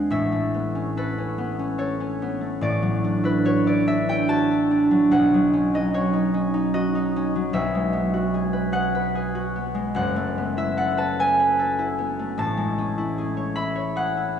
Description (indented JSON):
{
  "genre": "classical, solo harp piece",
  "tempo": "74 BPM",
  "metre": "3/4",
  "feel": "rubato",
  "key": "A major",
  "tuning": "A4 = 439 Hz",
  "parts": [
    { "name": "concert harp", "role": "solo", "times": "0.0-14.4 s", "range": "F#1 to B5", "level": "-20 LUFS", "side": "equal", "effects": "none" }
  ],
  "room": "wet cathedral reverb, RT60 4.3 s",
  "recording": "recorded in a church or concert hall, nothing above 11.0 kHz",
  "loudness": "-20 LUFS",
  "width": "side -8 dB against mid",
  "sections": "0.1-14.4 A section",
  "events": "none",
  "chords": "0.1 Aadd9; 2.6 Dadd9/A; 5.1 Badd9; 7.5 Eadd9/B; 10.0 F#m11; 12.4 Amaj7"
}